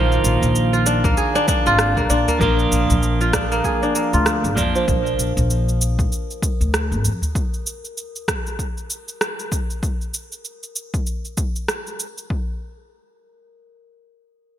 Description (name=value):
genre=organic downtempo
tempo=97 BPM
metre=4/4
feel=swing 59% on 16ths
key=Bb major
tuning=A4 = 439 Hz
part: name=clean electric guitar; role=accompaniment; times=0.0-4.9 s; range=Eb3 to F4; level=-24 LUFS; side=right 4 dB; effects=sidechain pumping, digital delay
part: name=kora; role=arpeggios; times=0.0-7.1 s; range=F3 to Ab4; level=-20 LUFS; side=right 1 dB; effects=low-pass filter, digital delay
part: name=upright bass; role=bass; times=0.0-7.2 s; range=Ab1 to F2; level=-20 LUFS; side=left 1 dB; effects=sidechain pumping
part: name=bronze singing bowl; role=texture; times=0.0-9.8 s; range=Bb4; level=-34 LUFS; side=left 6 dB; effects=none
part: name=electronic cabasa and rim click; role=drums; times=0.1-12.3 s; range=none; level=-25 LUFS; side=right 1 dB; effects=overdrive, gated reverb
part: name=udu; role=percussion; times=0.4-7.3 s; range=none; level=-26 LUFS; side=right 1 dB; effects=none
part: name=electronic kick drum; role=drums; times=1.0-12.4 s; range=none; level=-23 LUFS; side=left 1 dB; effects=overdrive
room=light reverb, small room ambience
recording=bright 1980s-style digital production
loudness=-18 LUFS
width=side -11 dB against mid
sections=0.0-2.4 A section; 2.4-12.3 B section; 12.3-14.6 C section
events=filter sweep on kora 2.4-4.9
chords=0.0 Eb5; 2.4 Bb; 12.3 N.C.